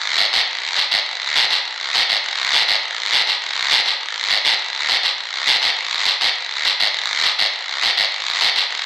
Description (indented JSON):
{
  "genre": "latin",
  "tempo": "204 BPM",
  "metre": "4/4",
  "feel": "straight",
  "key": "none",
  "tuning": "none",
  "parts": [
    { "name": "guiro", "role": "percussion", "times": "0.2-8.9 s", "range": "none", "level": "-14 LUFS", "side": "equal", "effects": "none" }
  ],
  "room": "light reverb",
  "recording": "home recording on cassette",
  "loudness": "-14 LUFS",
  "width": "side -16 dB against mid",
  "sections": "0.5-8.9 A section",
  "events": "none",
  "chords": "none"
}